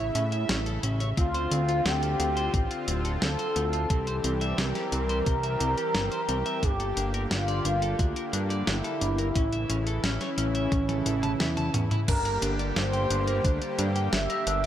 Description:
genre	synthwave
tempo	88 BPM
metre	4/4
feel	straight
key	unclear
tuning	A4 = 439 Hz
part	expressive synth lead	melody	0.0-14.7 s	C#4 to E5	-30 LUFS	equal	analog chorus, cassette tape, digital delay
part	soft supersaw	sustained chords	0.0-14.7 s	C#3 to E5	-34 LUFS	equal	sidechain pumping
part	electric guitar at the edge of break-up	arpeggios	0.0-14.7 s	C4 to A5	-36 LUFS	equal	wide subtle chorus, digital delay
part	fat analog bass	bass	0.0-14.7 s	D1 to A2	-29 LUFS	equal	tube saturation, sidechain pumping
part	clean 12-bit digital drum machine	drums	0.2-14.7 s	crash cymbal, hi-hat, snare drum, toms	-31 LUFS	equal	none
part	electronic kick drum	drums	1.2-13.6 s	none	-27 LUFS	equal	none
room	light reverb, digital ambience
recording	none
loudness	-24 LUFS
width	side -11 dB against mid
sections	0.0-12.1 A section; 12.1-14.7 B section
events	drum fill 10.7-12.1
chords	0.0 A; 1.2 Dm7; 3.9 C; 6.6 Gmadd9; 9.4 A; 12.1 Gm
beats	0.49 | 1.17 1.85 2.54 3.22 | 3.90 4.58 5.26 5.95 | 6.63 7.31 7.99 8.67 | 9.36 10.04 10.72 11.40 | 12.08 12.76 13.45 14.13

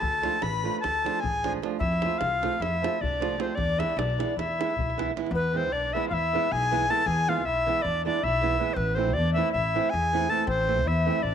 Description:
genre	balkan folk, Balkan wedding band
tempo	311 BPM (eighths)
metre	9/8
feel	straight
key	E phrygian dominant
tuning	A4 = 438 Hz
part	bright reedy tenor recorder	melody	0.0-11.3 s	B4 to B5	-27 LUFS	equal	none
part	accordion	second line	0.0-11.3 s	B3 to B4	-33 LUFS	left 11 dB	none
part	upright bass	bass	0.0-11.3 s	A1 to F2	-30 LUFS	left 1 dB	none
part	davul	percussion	0.0-5.3 s	none	-34 LUFS	right 1 dB	none
part	nylon-string guitar	accompaniment	0.2-11.2 s	E3 to F4	-32 LUFS	right 10 dB	none
room	moderate echo chamber reverb, RT60 1.8 s, studio ambience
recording	1960s-style stereo with parts hard left and right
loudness	-24 LUFS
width	side -8 dB against mid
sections	0.0-5.3 A section; 5.3-11.3 B section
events	speeding up 0.0-11.3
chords	0.0 Dm; 1.8 F; 3.6 E; 8.8 Am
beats	| 0.02 0.22 0.42 0.62 0.82 1.01 1.21 1.41 1.61 | 1.81 2.00 2.20 2.40 2.60 2.79 2.99 3.19 3.38 | 3.58 3.78 3.97 4.17 4.36 4.56 4.75 4.95 5.14 | 5.33 5.53 5.72 5.91 6.10 6.30 6.49 6.68 6.87 | 7.06 7.25 7.44 7.63 7.83 8.02 8.21 8.40 8.59 | 8.78 8.96 9.15 9.34 9.53 9.72 9.91 10.10 10.29 | 10.47 10.66 10.85 11.04 11.23

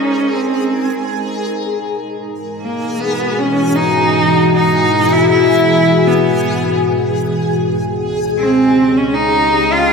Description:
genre	ambient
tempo	free time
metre	none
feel	none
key	unclear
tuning	A4 = 440 Hz
part	rich cello	melody	0.0-9.9 s	Bb3 to F4	-14 LUFS	right 1 dB	tape echo
part	glassy FM pad	sustained chords	0.0-9.9 s	Db2 to C5	-16 LUFS	left 1 dB	ensemble chorus, built-in reverb
part	backwards swelling texture	texture	0.0-9.9 s	G4 to Ab5	-22 LUFS	left 2 dB	built-in reverb, analog chorus
part	bowed-like drone	drone	8.1-9.9 s	Db3 to Ab3	-22 LUFS	left 1 dB	built-in reverb
room	wet plate reverb, RT60 3.0 s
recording	dreamy mix soaked in reverb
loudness	-12 LUFS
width	side -5 dB against mid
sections	0.0-7.6 A section; 7.6-9.9 B section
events	fade-in on ambient pad 0.0-7.6; filter sweep on ambient pad 7.6-9.9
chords	0.0 Ab; 1.5 Eadd9/G#; 7.6 Cm/Db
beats	free time

